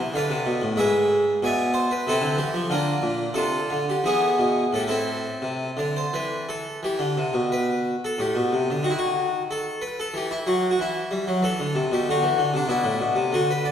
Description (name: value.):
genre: classical, baroque-style suite movement for harpsichord.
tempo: 84-96 BPM.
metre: 3/4.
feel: rubato.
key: A minor, E minor from 6.8 s.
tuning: A4 = 437 Hz.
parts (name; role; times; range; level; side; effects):
harpsichord; solo; 0.0-13.7 s; G#2 to G#5; -21 LUFS; equal; none.
room: wet scoring stage reverb, RT60 1.8 s.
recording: recorded in a church or concert hall.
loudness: -21 LUFS.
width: side -8 dB against mid.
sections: 0.0-6.8 A section; 6.8-13.7 A section.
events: none.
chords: 0.1 Bdim; 0.8 E7/G#; 2.1 Am/C; 2.7 Bb; 4.0 E; 4.7 Am; 8.8 N.C.; 10.1 Emadd9; 10.8 C; 12.7 Amadd11.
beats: 0.14 | 0.77 1.41 2.06 | 2.71 3.36 4.03 | 4.73 5.44 6.15 | 6.84 7.52 8.18 | 8.83 9.47 10.13 | 10.77 11.42 12.06 | 12.69 13.32.